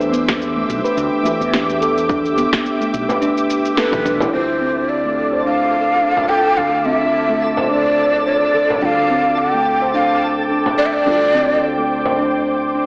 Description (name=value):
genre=organic downtempo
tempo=107 BPM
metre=4/4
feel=swing 55% on 16ths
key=D dorian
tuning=A4 = 440 Hz
part: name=felt-muted upright piano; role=accompaniment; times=0.0-12.9 s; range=D3 to B4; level=-27 LUFS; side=equal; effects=none
part: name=ethereal airy pad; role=sustained chords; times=0.0-12.9 s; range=F4 to D6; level=-22 LUFS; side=equal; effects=ensemble chorus, built-in reverb, sidechain pumping
part: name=mellow fretless electric bass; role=bass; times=0.0-12.9 s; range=B1 to E2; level=-30 LUFS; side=equal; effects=ensemble chorus, sidechain pumping
part: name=electronic shaker and snare drum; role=drums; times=0.0-4.3 s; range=none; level=-22 LUFS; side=equal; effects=overdrive, studio reverb
part: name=steel tongue drum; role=arpeggios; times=0.1-12.8 s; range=A3 to C5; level=-19 LUFS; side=equal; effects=low-pass filter, tape echo
part: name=electronic kick drum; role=drums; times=0.3-4.2 s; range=none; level=-25 LUFS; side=equal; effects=overdrive, studio reverb
part: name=frame drum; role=percussion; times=3.1-12.2 s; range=none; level=-24 LUFS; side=equal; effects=none
part: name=breathy mellow ney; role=melody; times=3.8-11.6 s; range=B4 to G5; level=-16 LUFS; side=equal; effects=tape echo
part: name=twinkling granular texture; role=texture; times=4.9-12.9 s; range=A4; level=-27 LUFS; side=equal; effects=built-in reverb
room=wet echo chamber reverb, RT60 1.5 s, small room ambience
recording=AM radio sound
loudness=-14 LUFS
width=side -32 dB against mid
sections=0.0-4.3 A section; 4.3-12.9 B section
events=band accent 3.8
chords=0.0 Em7; 4.3 Dm